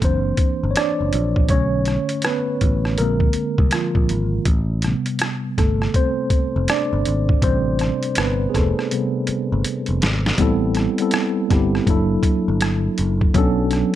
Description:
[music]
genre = R&B, neo-soul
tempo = 81 BPM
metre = 4/4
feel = swing 63% on 16ths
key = A minor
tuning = A4 = 440 Hz
[part]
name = mellow tine electric piano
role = accompaniment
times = 0.0-14.0 s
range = C3 to D5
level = -20 LUFS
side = equal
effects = medium stereo tremolo, plate reverb
[part]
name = picked electric bass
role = bass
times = 0.0-13.8 s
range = F1 to C2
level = -21 LUFS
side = equal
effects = none
[part]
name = boom bap sampler-style drum kit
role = drums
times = 0.0-13.9 s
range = hi-hat, kick drum, rim click, snare drum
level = -20 LUFS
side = equal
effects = none
[sound]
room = light reverb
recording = dark, warm production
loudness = -17 LUFS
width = side -12 dB against mid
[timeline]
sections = 0.0-10.4 A section; 10.4-14.0 A section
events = tine electric piano solo 0.0-10.4; drum fill 8.9-10.4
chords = 0.0 F#aug7; 1.5 Bm7; 3.0 Bb9; 4.5 Am7; 11.9 F#7alt; 13.3 Bm7

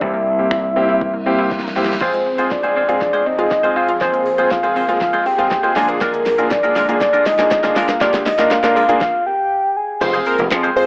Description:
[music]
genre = dance-pop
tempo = 120 BPM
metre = 4/4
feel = straight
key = F dorian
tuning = A4 = 440 Hz
[part]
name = soft octave-layered synth lead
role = melody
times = 0.0-10.0 s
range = Bb4 to Ab5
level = -17 LUFS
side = equal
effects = chorus, tape echo
[part]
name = clear baby grand piano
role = accompaniment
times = 0.0-10.9 s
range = Ab3 to C5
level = -20 LUFS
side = equal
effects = sidechain pumping
[part]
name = analog pluck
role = arpeggios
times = 0.0-9.0 s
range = Bb2 to F4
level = -27 LUFS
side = equal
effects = chorus, sidechain pumping, tape echo
[part]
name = gritty slap bass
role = bass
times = 0.0-2.0, 10.0-10.7 s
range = F1 to F2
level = -22 LUFS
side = equal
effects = overdrive, sidechain pumping
[part]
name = deep house drum kit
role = drums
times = 0.0-10.9 s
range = crash cymbal, finger snaps, handclaps, hi-hat, kick drum, shaker, snare drum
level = -23 LUFS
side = equal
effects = none
[part]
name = reverse cymbal, riser, downlifter and impact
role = sound effects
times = 1.2-10.9 s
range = none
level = -36 LUFS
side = equal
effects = none
[part]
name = supersaw chords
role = sustained chords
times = 2.0-10.9 s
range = F2 to Ab4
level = -29 LUFS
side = equal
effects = sidechain pumping
[part]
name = twangy electric guitar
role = riff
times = 2.0-10.8 s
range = Ab3 to C5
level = -22 LUFS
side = equal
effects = lush chorus
[part]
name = group handclap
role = percussion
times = 6.5-8.6 s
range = none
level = -32 LUFS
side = equal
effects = none
[part]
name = plucky unison lead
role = melody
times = 10.0-10.9 s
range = Bb4 to C5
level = -19 LUFS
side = equal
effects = sidechain pumping
[sound]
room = light reverb, digital ambience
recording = rough home demo mix, AM radio sound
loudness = -14 LUFS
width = side -30 dB against mid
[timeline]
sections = 0.0-2.0 A section; 2.0-10.0 B section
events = reverse cymbal 1.2-2.0; drum fill 1.5-2.0, 2.0-9.0; build-up 2.0-10.0; stop 9.0-10.0; impact 10.0-10.9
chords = 0.0 C7; 2.0 Fm; 5.8 Bb7; 10.0 Fm

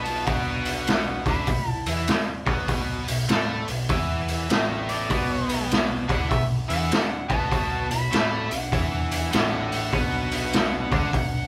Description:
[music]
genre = blues rock power trio and southern rock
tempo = 100 BPM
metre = 4/4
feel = swing 64% on 8ths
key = B minor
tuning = A4 = 439 Hz
[part]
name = overdriven harmonica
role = melody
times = 0.0-11.5 s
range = D5 to B5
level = -33 LUFS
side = equal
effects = none
[part]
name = biting lead guitar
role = second line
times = 0.0-11.5 s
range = B3 to F#4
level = -39 LUFS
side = equal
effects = none
[part]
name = cranked stack guitar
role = riff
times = 0.0-11.4 s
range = A2 to A4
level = -30 LUFS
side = equal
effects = overdrive
[part]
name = growling picked electric bass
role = bass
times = 0.0-11.5 s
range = A1 to A2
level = -34 LUFS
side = equal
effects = overdrive
[part]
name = raw garage drum kit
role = drums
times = 0.1-11.3 s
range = hi-hat, kick drum, snare drum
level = -27 LUFS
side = equal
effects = none
[sound]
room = light reverb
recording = band playing live in one room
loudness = -24 LUFS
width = mono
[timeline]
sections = 0.0-11.5 A section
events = none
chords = 0.0 Bm

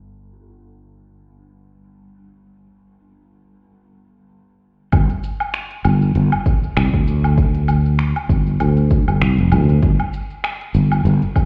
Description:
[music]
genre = organic downtempo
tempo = 98 BPM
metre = 4/4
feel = swing 56% on 16ths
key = unclear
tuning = A4 = 440 Hz
[part]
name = sustaining fretless electric bass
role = bass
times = 0.0-11.2 s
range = F1 to D2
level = -17 LUFS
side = equal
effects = sidechain pumping
[part]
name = electronic kick drum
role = drums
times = 4.9-11.5 s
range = none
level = -20 LUFS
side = equal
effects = none
[part]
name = organic electronic drum kit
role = drums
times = 4.9-11.5 s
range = finger snaps, hi-hat, shaker, woodblock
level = -28 LUFS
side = equal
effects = overdrive
[sound]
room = little or no reverb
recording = heard muffled through a wall, stone room reverb, EQ, low-pass filter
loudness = -17 LUFS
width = mono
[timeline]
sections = 0.0-4.9 A section; 4.9-11.5 B section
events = filter sweep 0.0-4.9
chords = none

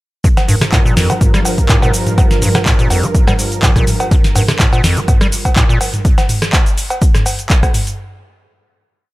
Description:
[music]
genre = acid house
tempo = 124 BPM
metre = 4/4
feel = swing 53% on 16ths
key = G minor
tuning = A4 = 439 Hz
[part]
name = warm analog pad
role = sustained chords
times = 0.2-6.0 s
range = G2 to Bb4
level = -20 LUFS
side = right 1 dB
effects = chorus, sidechain pumping
[part]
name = acid bass, square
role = riff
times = 0.2-5.8 s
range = F2 to G3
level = -17 LUFS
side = equal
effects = overdrive, dub echo
[part]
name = booming analog drum machine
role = drums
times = 0.2-8.0 s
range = cowbell, handclaps, hi-hat, rim click, shaker, snare drum, toms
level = -16 LUFS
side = equal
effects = none
[part]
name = electronic kick drum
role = drums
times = 0.2-7.7 s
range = none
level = -13 LUFS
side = equal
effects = none
[sound]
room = little or no reverb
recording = none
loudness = -10 LUFS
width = side -18 dB against mid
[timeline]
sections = 0.2-8.0 drop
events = drop 0.2-8.0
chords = 0.2 Gm7

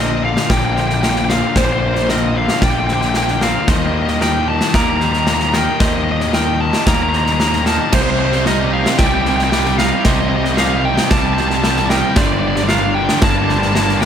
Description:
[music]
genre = post-rock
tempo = 113 BPM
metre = 4/4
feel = straight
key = unclear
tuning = A4 = 440 Hz
[part]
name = bluesy overdriven lead guitar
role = melody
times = 0.0-14.1 s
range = C5 to Bb5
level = -19 LUFS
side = right 1 dB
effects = distortion, analog delay
[part]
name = warm chamber string section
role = sustained chords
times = 0.0-14.1 s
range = C3 to Eb5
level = -30 LUFS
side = left 2 dB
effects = none
[part]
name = twangy electric guitar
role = arpeggios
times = 0.0-14.1 s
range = G2 to Eb4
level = -26 LUFS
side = left 2 dB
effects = none
[part]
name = twangy electric guitar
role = arpeggios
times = 0.0-14.1 s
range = Bb4 to D5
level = -28 LUFS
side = right 6 dB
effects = analog delay
[part]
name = thick fuzz guitar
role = riff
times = 0.0-14.0 s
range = G2 to G3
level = -21 LUFS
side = left 12 dB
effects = distortion
[part]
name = fuzz picked electric bass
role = bass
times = 0.0-14.1 s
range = G1 to Eb2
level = -21 LUFS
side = right 1 dB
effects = overdrive
[part]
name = big rock drum kit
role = drums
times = 0.4-14.1 s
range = crash cymbal, kick drum, snare drum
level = -18 LUFS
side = equal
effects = none
[part]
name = crunchy overdriven guitar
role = riff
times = 7.9-14.0 s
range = G2 to G3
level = -22 LUFS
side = right 13 dB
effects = spring reverb
[sound]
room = light reverb, small room ambience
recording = none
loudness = -13 LUFS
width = side -8 dB against mid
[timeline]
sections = 0.0-14.1 A section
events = build-up 0.0-14.1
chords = 0.0 Bbadd9; 3.7 Eb; 7.9 Cm; 12.2 Gm

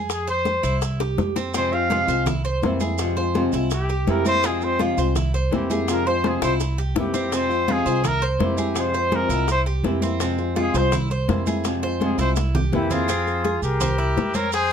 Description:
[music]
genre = latin, Cuban son and guajira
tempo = 166 BPM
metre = 4/4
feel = straight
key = F harmonic minor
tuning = A4 = 440 Hz
[part]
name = Cuban tres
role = arpeggios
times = 0.0-14.7 s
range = C4 to C5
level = -28 LUFS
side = right 5 dB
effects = none
[part]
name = upright bass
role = bass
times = 0.0-14.7 s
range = C2 to F2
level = -25 LUFS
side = right 1 dB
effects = none
[part]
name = warm trumpet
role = melody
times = 0.1-14.7 s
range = E4 to F5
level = -24 LUFS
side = equal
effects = none
[part]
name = bongos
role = percussion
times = 0.1-14.7 s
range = none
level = -30 LUFS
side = left 9 dB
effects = none
[part]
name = congas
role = percussion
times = 0.1-14.7 s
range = none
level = -29 LUFS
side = left 1 dB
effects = none
[part]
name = maracas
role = percussion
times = 0.1-14.7 s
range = none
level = -36 LUFS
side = right 9 dB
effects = none
[part]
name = flamenco guitar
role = accompaniment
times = 1.5-13.1 s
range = C3 to F4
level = -24 LUFS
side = left 2 dB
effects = none
[part]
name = breathy silver concert flute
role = second line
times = 12.7-14.7 s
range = G4 to Db5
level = -28 LUFS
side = left 6 dB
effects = none
[sound]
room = light reverb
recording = close, detailed microphones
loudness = -19 LUFS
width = side -8 dB against mid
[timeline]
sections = 0.0-13.1 A section; 13.1-14.7 B section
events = trumpet solo 0.0-13.1; drum fill 1.0-1.5, 6.2-7.3, 12.0-13.1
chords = 0.0 Fm; 0.8 C; 1.5 Fm; 2.3 C7; 3.0 Fm; 3.7 C7; 4.4 Fm; 5.2 C7; 5.9 Fm; 6.6 C7; 7.3 Fm; 8.0 C7; 8.8 Fm; 9.5 C7; 10.2 Fm; 10.9 C7; 11.6 Fm; 12.4 C7; 13.1 Fm; 13.8 C7

